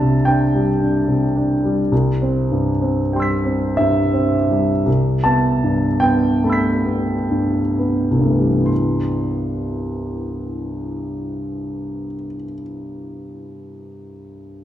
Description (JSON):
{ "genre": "classical, impressionist solo piano", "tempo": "20-37 BPM (dotted quarters)", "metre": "9/8", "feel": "rubato", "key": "C major", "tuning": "A4 = 441 Hz", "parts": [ { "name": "warm grand piano", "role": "solo", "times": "0.0-14.6 s", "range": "C2 to B6", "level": "-17 LUFS", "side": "equal", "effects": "none" } ], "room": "moderate recital hall reverb, RT60 1.7 s", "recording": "dark, warm production", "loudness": "-16 LUFS", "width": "side -12 dB against mid", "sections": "0.0-8.7 A section; 8.7-14.6 B section", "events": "slowing down 0.0-8.7", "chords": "0.0 Csus2; 1.9 Cmaj7; 4.9 Am9/C; 8.7 Cmaj7" }